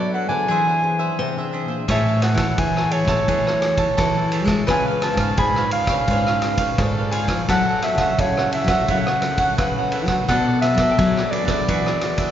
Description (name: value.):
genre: samba and choro.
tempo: 86 BPM.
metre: 4/4.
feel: straight.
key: A major.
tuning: A4 = 440 Hz.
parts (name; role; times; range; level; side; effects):
mellow clarinet; melody; 0.0-12.3 s; C#5 to B5; -22 LUFS; equal; none.
mandolin; second line; 0.0-12.3 s; F#4 to C#5; -29 LUFS; left 2 dB; none.
cavaquinho; accompaniment; 0.0-12.3 s; D4 to A5; -27 LUFS; right 3 dB; none.
nylon-string guitar; accompaniment; 0.0-12.3 s; C#3 to D5; -28 LUFS; left 3 dB; none.
nylon-string guitar; bass; 0.0-12.3 s; G#2 to G#3; -23 LUFS; equal; none.
vintage drum kit; drums; 1.9-12.3 s; kick drum, ride cymbal, rim click; -24 LUFS; equal; none.
room: wet church reverb, RT60 3.6 s.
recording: recorded in a church or concert hall, nothing above 7.6 kHz.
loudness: -17 LUFS.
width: side -10 dB against mid.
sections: 0.0-12.3 A section.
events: none.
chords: 0.5 Eaug7; 1.9 Amaj7; 4.7 C#7b9; 7.5 F#m7; 10.3 Bm7; 11.7 E13.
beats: 0.50 1.20 | 1.89 2.59 3.29 3.99 | 4.69 5.39 6.09 6.79 | 7.49 8.19 8.89 9.59 | 10.29 10.99 11.69.